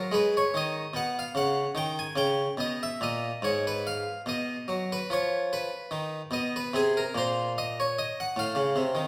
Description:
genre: classical, baroque-style suite movement for harpsichord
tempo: 73 BPM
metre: 4/4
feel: rubato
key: unclear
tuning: A4 = 441 Hz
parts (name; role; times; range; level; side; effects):
- harpsichord; solo; 0.0-9.1 s; Ab2 to Ab5; -29 LUFS; equal; none
room: wet recital hall reverb, RT60 1.6 s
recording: none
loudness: -29 LUFS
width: mono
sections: 0.0-9.1 A section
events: none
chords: 0.1 Abm; 1.8 Eb5; 3.4 Abm; 6.7 Bbm11; 8.4 F7/A

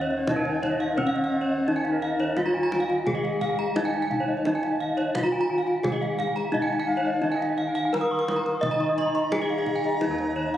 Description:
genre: Balinese gamelan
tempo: 86 BPM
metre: 4/4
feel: straight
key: Eb slendro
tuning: A4 = 440 Hz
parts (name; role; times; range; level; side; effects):
- gamelan-type bronze metallophone; melody; 0.0-10.6 s; Db4-45c to Eb5; -26 LUFS; left 1 dB; slapback echo
- gamelan-type bronze metallophone; accompaniment; 0.0-10.6 s; Eb3 to Eb4; -36 LUFS; left 1 dB; none
- gamelan-type bronze metallophone; arpeggios; 0.0-10.6 s; Bb4+25c to Eb6; -31 LUFS; right 2 dB; none
- gamelan-type bossed gongs; bass; 0.0-10.6 s; Eb2 to F4+30c; -33 LUFS; equal; none
- bright reedy bansuri; second line; 0.1-10.6 s; Bb4+20c to Bb5+29c; -34 LUFS; left 1 dB; none
- gamelan-type bronze metallophone; arpeggios; 0.1-10.5 s; Db5-45c to Eb6; -32 LUFS; left 1 dB; slapback echo
- kendang; percussion; 0.1-10.6 s; none; -36 LUFS; right 1 dB; none
room: moderate concert hall reverb, RT60 2.3 s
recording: recorded on a phone in the room, club reverb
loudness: -23 LUFS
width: side -12 dB against mid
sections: 0.0-10.6 A section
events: none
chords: none

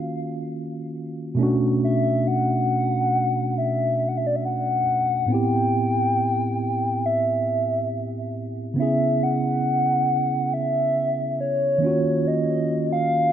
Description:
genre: R&B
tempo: 69 BPM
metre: 4/4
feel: straight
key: unclear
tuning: A4 = 441 Hz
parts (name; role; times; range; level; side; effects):
- mellow tine electric piano; accompaniment; 0.0-13.3 s; A2 to G#4; -23 LUFS; right 1 dB; fast stereo tremolo
- hollow clarinet-like synth lead; melody; 1.8-13.3 s; C#5 to G5; -23 LUFS; left 1 dB; chorus, tape echo
room: light reverb, digital ambience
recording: dark, warm production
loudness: -20 LUFS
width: side -10 dB against mid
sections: 0.0-13.3 A section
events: none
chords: 0.0 D#m9; 1.4 Bm9; 5.3 Am9; 8.8 C#m7; 11.8 D#m9

